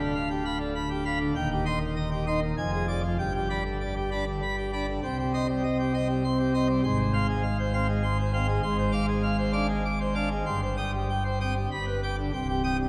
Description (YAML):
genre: classical, organ toccata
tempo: 99 BPM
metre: 3/4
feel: straight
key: C minor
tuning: A4 = 436 Hz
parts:
  - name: pipe organ, plenum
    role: solo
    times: 0.0-12.9 s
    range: C1 to Eb6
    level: -28 LUFS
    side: equal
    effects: none
room: wet church reverb, RT60 2.7 s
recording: none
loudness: -28 LUFS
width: mono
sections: 0.0-12.3 A section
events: none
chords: 0.0 G7/D; 1.4 Cm/Eb; 2.6 Ddim/F; 3.2 G; 5.0 Cm; 6.8 Fm/Ab; 8.6 Dm7b5/Ab; 10.5 Cm/G; 11.7 G; 12.3 Cm